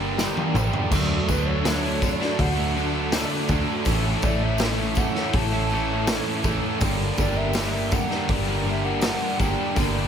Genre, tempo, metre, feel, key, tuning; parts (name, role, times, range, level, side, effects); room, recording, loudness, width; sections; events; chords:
rock, shoegaze and dream pop; 81 BPM; 4/4; straight; D major; A4 = 440 Hz
reedy FM lead; melody; 0.0-9.8 s; B4 to A5; -32 LUFS; right 1 dB; chorus, slapback echo
dark analog pad; sustained chords; 0.0-10.1 s; D4 to Bb5; -34 LUFS; equal; chorus
twelve-string electric guitar; arpeggios; 0.0-10.1 s; E3 to A4; -35 LUFS; right 6 dB
biting overdriven guitar; riff; 0.0-10.1 s; G2 to E4; -29 LUFS; right 11 dB; reverse reverb
crunchy overdriven guitar; riff; 0.0-10.1 s; G2 to D4; -30 LUFS; left 1 dB
thick fuzz guitar; riff; 0.0-10.1 s; G2 to D4; -30 LUFS; left 13 dB; distortion, ensemble chorus
vintage muted fingered electric bass; bass; 0.0-10.0 s; G1 to D2; -27 LUFS; equal
raw garage drum kit; drums; 0.2-9.9 s; crash cymbal, hi-hat, kick drum, snare drum, toms; -26 LUFS; equal
tambourine; percussion; 0.2-9.9 s; -39 LUFS; left 12 dB
little or no reverb; -21 LUFS; side -8 dB against mid
0.0-10.1 A section
drum fill 0.2-0.9
0.0 Gm; 0.9 D; 3.9 A; 6.8 Gm